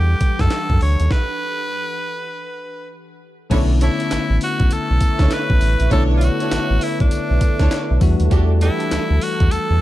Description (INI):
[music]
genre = R&B, new jack swing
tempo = 100 BPM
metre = 4/4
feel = swing 63% on 16ths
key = B minor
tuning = A4 = 440 Hz
[part]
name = raspy tenor saxophone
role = melody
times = 0.0-9.8 s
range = D4 to C#5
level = -24 LUFS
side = equal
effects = none
[part]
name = bell-like tine electric piano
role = accompaniment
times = 0.0-9.8 s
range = D3 to F#5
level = -24 LUFS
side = left 6 dB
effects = none
[part]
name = ethereal airy pad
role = sustained chords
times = 0.0-9.8 s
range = E3 to C#6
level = -30 LUFS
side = right 4 dB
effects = ensemble chorus, built-in reverb
[part]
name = round analog bass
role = bass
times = 0.0-9.8 s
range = A1 to F#2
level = -16 LUFS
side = equal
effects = none
[part]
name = breakbeat sampler-style drum kit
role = drums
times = 0.2-9.7 s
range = crash cymbal, handclaps, hi-hat, kick drum, snare drum, tambourine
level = -19 LUFS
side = equal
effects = none
[part]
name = warm studio string section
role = stabs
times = 3.5-8.8 s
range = D4 to C#5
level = -27 LUFS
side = right 3 dB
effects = none
[sound]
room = little or no reverb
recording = dark, warm production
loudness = -15 LUFS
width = side -15 dB against mid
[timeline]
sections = 0.0-3.5 A section; 3.5-9.8 B section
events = stop 1.1-3.5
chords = 0.0 Em11; 3.5 Bm11; 8.0 Em11